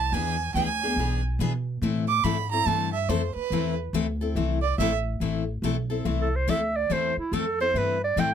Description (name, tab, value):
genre	acoustic string swing (jazz manouche)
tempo	142 BPM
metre	4/4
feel	swing 64% on 8ths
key	A minor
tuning	A4 = 440 Hz
part	warm violin	second line	0.0-4.9 s	B4 to D6	-27 LUFS	right 8 dB	none
part	upright bass	bass	0.0-8.3 s	A1 to B2	-28 LUFS	equal	none
part	picked steel-string acoustic guitar	accompaniment	0.1-8.3 s	E3 to A4	-28 LUFS	left 7 dB	none
part	clear clarinet	melody	6.2-8.3 s	E4 to G5	-25 LUFS	right 2 dB	none
room	light reverb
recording	close, detailed microphones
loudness	-23 LUFS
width	side -8 dB against mid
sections	0.0-5.2 A section; 5.2-8.3 A section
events	violin solo 0.0-5.2; clarinet solo 5.2-8.3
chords	0.1 E7; 1.8 Am